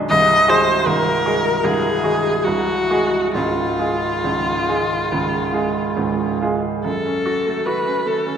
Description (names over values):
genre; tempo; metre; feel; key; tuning
classical, romantic duo for viola and grand piano; 66-78 BPM; 4/4; rubato; unclear; A4 = 442 Hz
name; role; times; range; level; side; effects
clear baby grand piano; accompaniment; 0.0-8.4 s; B0 to G#4; -20 LUFS; right 2 dB; none
rich viola; melody; 0.1-8.4 s; E#4 to D#5; -18 LUFS; left 1 dB; none
room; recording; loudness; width
wet concert hall reverb, RT60 1.8 s; none; -16 LUFS; side -8 dB against mid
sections
0.0-6.9 A section; 6.9-8.4 B section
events
none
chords
0.1 G#7/B#; 3.3 C#; 6.9 F#m